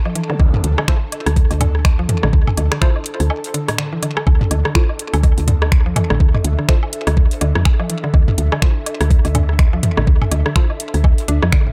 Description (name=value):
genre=minimal techno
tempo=124 BPM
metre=4/4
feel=swing 59% on 16ths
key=unclear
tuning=A4 = 440 Hz
part: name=airy breathy pad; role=texture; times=0.0-11.7 s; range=D4 to A5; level=-32 LUFS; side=equal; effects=chorus, sidechain pumping
part: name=mallet-like synth pluck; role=riff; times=0.1-11.7 s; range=A2 to D4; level=-28 LUFS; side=equal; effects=chorus, sidechain pumping, dub echo
part: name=organic electronic drum kit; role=percussion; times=0.1-11.5 s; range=rim click, toms, woodblock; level=-24 LUFS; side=equal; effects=tape echo
part: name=garage drum kit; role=drums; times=0.2-11.6 s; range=finger snaps, hi-hat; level=-27 LUFS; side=equal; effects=overdrive, tape echo
part: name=woody FM bass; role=bass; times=0.4-11.5 s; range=A1 to F2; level=-20 LUFS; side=equal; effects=sidechain pumping
part: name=electronic kick drum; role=drums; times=0.4-11.6 s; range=none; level=-16 LUFS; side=equal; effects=overdrive
part: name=filtered dub chord stab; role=stabs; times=0.9-10.6 s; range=E4 to C5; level=-32 LUFS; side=equal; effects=phaser, tape echo
room=digital ambience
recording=echo-heavy mix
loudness=-16 LUFS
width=mono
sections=0.0-11.7 A section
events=break 3.3-4.3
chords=0.0 D5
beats=| 0.40 0.88 1.36 1.85 | 2.33 2.82 3.30 3.78 | 4.27 4.75 5.24 5.72 | 6.20 6.69 7.17 7.65 | 8.14 8.62 9.11 9.59 | 10.07 10.56 11.04 11.53